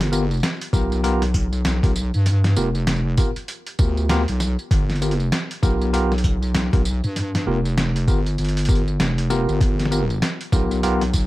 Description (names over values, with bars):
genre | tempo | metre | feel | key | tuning
glitch hop | 98 BPM | 4/4 | swing 60% on 16ths | unclear | A4 = 440 Hz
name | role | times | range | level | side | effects
tine electric piano | stabs | 0.0-11.0 s | B3 to A#4 | -26 LUFS | left 1 dB | medium stereo tremolo, vintage 12-bit sampler grit, sidechain pumping, ping-pong delay
wobble bass | bass | 0.0-11.3 s | F1 to G2 | -21 LUFS | equal | chorus, overdrive
boom bap sampler-style drum kit | drums | 0.0-11.3 s | hi-hat, snare drum, tambourine | -25 LUFS | equal | overdrive, small room ambience
electronic kick drum | drums | 0.7-11.3 s | none | -19 LUFS | equal | overdrive, small room ambience
room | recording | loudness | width
little or no reverb | vinyl crackle | -18 LUFS | side -17 dB against mid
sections
0.0-11.3 A section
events
none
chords
0.0 G7#9